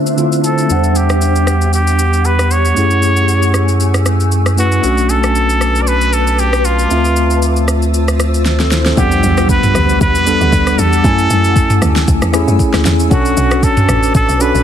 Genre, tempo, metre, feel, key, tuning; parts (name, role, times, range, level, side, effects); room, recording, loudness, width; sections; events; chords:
amapiano; 116 BPM; 4/4; swing 55% on 16ths; E dorian; A4 = 441 Hz
tine electric piano; accompaniment; 0.0-14.6 s; D3 to G#5; -17 LUFS; left 1 dB; fast stereo tremolo
granular cloud pad; sustained chords; 0.0-14.6 s; A3 to E6; -21 LUFS; equal; built-in reverb, sidechain pumping, low-pass filter
smooth R&B drum kit; drums; 0.1-14.6 s; kick drum, rim click, shaker, snare drum, toms; -17 LUFS; equal; soft clipping on snare
trumpet with straight mute; melody; 0.4-14.6 s; F4 to D5; -17 LUFS; equal; low-pass filter, digital delay
warm sub bass; bass; 0.7-8.9 s; B1 to F#2; -14 LUFS; equal
woody log drum bass; bass; 9.0-14.6 s; A1 to F#2; -15 LUFS; equal
impact; sound effects; 9.0-11.0 s; -22 LUFS; equal
digital ambience; dense, heavily limited modern master; -10 LUFS; side -9 dB against mid
0.0-9.0 A section; 9.0-14.6 B section
filter sweep 0.0-9.0; drum fill 8.5-9.0; drop 9.0-14.6; impact 9.0-11.0
0.0 Dm9; 0.7 Em9; 2.8 F#m9; 4.8 Bm9; 6.9 Dm9; 9.0 Em9; 11.0 F#m9; 13.1 Bm9